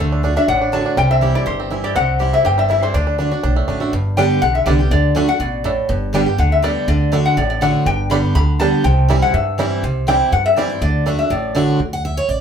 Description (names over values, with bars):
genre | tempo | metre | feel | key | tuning
bluegrass | 244 BPM | 4/4 | straight | D mixolydian | A4 = 440 Hz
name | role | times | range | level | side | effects
bluegrass banjo | melody | 0.0-11.6 s | G3 to G4 | -23 LUFS | right 4 dB | none
lap resonator guitar | melody | 0.0-11.7 s | A4 to B5 | -19 LUFS | left 3 dB | none
picked steel-string acoustic guitar | accompaniment | 0.0-12.4 s | G2 to F#5 | -18 LUFS | right 1 dB | none
upright bass | bass | 0.0-12.4 s | G1 to G2 | -20 LUFS | equal | none
room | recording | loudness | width
wet studio reverb, RT60 0.6 s | band playing live in one room | -14 LUFS | side -7 dB against mid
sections
0.0-3.9 A section; 3.9-11.8 B section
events
none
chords
0.0 D; 1.0 C; 2.9 D; 3.9 G; 4.9 D; 5.9 G; 6.9 D; 7.9 G; 8.8 C; 10.8 D; 11.8 D5